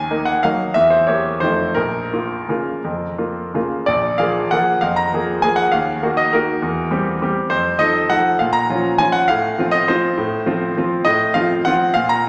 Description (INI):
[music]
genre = classical, piano waltz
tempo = 162-214 BPM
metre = 3/4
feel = rubato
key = Bb minor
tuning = A4 = 440 Hz
[part]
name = bright grand piano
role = solo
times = 0.0-12.3 s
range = Bb1 to Bb5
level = -18 LUFS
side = equal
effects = none
[sound]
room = wet concert hall reverb, RT60 2.3 s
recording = none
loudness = -18 LUFS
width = mono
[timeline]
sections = 0.0-3.9 A section; 3.9-12.3 B section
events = none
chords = 0.0 Ebm; 0.8 Edim7; 1.4 F7; 1.8 Bbm; 3.9 Bb7; 5.7 Ebm; 6.6 C7/E; 7.5 F7; 8.4 Bbm; 9.3 F/A